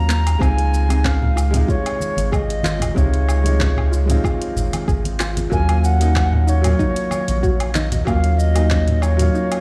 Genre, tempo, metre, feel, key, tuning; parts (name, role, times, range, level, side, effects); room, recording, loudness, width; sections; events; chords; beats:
sunset chillout; 94 BPM; 4/4; swing 54% on 16ths; Db major; A4 = 440 Hz
baroque flute; melody; 0.0-9.6 s; Db5 to Bb5; -28 LUFS; equal; tape echo
warm baby grand piano; accompaniment; 0.0-9.6 s; C3 to F4; -26 LUFS; equal; delay
soft round pluck; arpeggios; 0.0-9.6 s; Bb3 to Ab4; -32 LUFS; equal; chorus, delay
round analog bass; bass; 0.0-9.3 s; Ab1 to Eb2; -20 LUFS; equal
deep house drum kit; drums; 0.1-9.6 s; handclaps, hi-hat, shaker, woodblock; -30 LUFS; equal
electronic kick drum; drums; 0.4-8.8 s; -24 LUFS; equal
congas; percussion; 1.2-9.3 s; -29 LUFS; equal
light reverb, small room ambience; played on a big sound system in a bare room, stone room reverb; -18 LUFS; mono
0.0-9.6 A section
break 9.3
0.4 Dbmaj7; 5.5 Ebm7
| 0.41 1.05 1.69 2.32 | 2.96 3.60 4.24 4.88 | 5.51 6.15 6.79 7.43 | 8.07 8.71 9.35